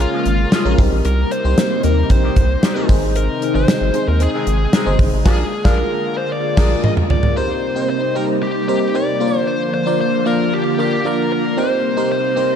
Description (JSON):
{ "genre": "1980s-style pop", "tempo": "114 BPM", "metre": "4/4", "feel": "straight", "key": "Eb major", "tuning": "A4 = 440 Hz", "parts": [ { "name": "bluesy overdriven lead guitar", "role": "melody", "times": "0.0-12.6 s", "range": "F4 to Eb5", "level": "-22 LUFS", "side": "left 2 dB", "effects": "distortion, ping-pong delay" }, { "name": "FM electric piano", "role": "accompaniment", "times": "0.0-12.6 s", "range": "Bb3 to D5", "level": "-21 LUFS", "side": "equal", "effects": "chorus, phaser" }, { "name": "soft string machine", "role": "sustained chords", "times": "0.0-12.6 s", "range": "C3 to F4", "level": "-22 LUFS", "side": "equal", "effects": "phaser, ensemble chorus" }, { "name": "rubbery square bass", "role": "bass", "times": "0.0-6.8 s", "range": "G1 to Eb2", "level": "-18 LUFS", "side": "equal", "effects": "none" }, { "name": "mellow horn section", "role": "stabs", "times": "0.1-6.7 s", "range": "Eb3 to Ab4", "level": "-30 LUFS", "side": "left 1 dB", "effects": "ping-pong delay" }, { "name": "gated 80s drum kit", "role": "drums", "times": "0.3-7.4 s", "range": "crash cymbal, hi-hat, kick drum, snare drum, toms", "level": "-16 LUFS", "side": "equal", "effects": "none" } ], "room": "light reverb", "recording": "dark, warm production", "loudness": "-14 LUFS", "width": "side -8 dB against mid", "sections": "0.0-7.4 A section; 7.4-12.6 B section", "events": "band accent 5.3-7.4; drum fill 6.3-7.4", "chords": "0.0 Bbm7; 0.8 Cm7; 2.9 Ab; 5.3 Bb7; 7.4 Eb6; 9.2 Bb; 11.6 Eb6" }